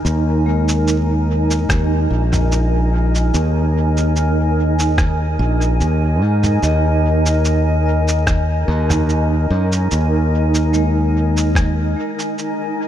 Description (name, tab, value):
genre	ambient dub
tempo	73 BPM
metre	4/4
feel	swing 54% on 16ths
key	unclear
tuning	A4 = 440 Hz
part	granular cloud pad	sustained chords	0.0-12.9 s	Eb4 to Ab5	-21 LUFS	right 2 dB	built-in reverb
part	vibraphone with medium mallets	arpeggios	0.0-12.9 s	Ab3 to Eb5	-27 LUFS	left 4 dB	tape echo
part	modern bright fingered electric bass	bass	0.0-11.9 s	Bb1 to Ab2	-16 LUFS	equal	none
part	lo-fi sampler-style drum kit	drums	0.1-12.6 s	rim click, shaker, toms	-25 LUFS	right 1 dB	dub echo
part	electronic kick drum	drums	1.7-11.7 s	none	-18 LUFS	equal	none
room	digital ambience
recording	none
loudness	-14 LUFS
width	side -10 dB against mid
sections	0.0-12.9 A section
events	none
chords	0.0 Eb5